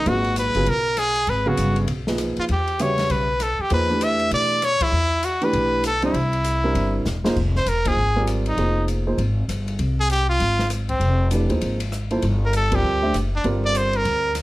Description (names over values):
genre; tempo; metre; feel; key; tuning
modal jazz; 197 BPM; 4/4; swing 62% on 8ths; F dorian from 7.4 s; A4 = 440 Hz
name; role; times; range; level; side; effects
brilliant trumpet; melody; 0.0-14.4 s; C4 to E5; -22 LUFS; equal; none
warm upright piano; accompaniment; 0.0-9.2, 11.3-14.3 s; A#2 to E#5; -24 LUFS; right 2 dB; none
upright bass; bass; 0.0-14.4 s; E1 to B2; -23 LUFS; equal; none
open jazz drum kit; drums; 0.1-14.4 s; crash cymbal, hi-hat, kick drum, ride cymbal, rim click, snare drum; -32 LUFS; left 2 dB; none
room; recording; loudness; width
light reverb; none; -19 LUFS; side -17 dB against mid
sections
0.0-7.4 A section; 7.4-14.4 B section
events
band accent 4.8, 7.8, 12.7; drum fill 7.1-7.4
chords
0.0 G#m9; 2.5 Em9; 6.1 C7; 7.4 Fm11; 12.2 Gm11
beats
| 0.06 0.37 0.67 0.97 | 1.28 1.58 1.89 2.19 | 2.49 2.80 3.10 3.41 | 3.71 4.01 4.32 4.62 | 4.93 5.23 5.54 5.84 | 6.14 6.45 6.75 7.06 | 7.36 7.67 7.97 8.28 | 8.58 8.88 9.19 9.49 | 9.80 10.10 10.40 10.71 | 11.01 11.32 11.62 11.93 | 12.23 12.53 12.84 13.14 | 13.45 13.75 14.05 14.36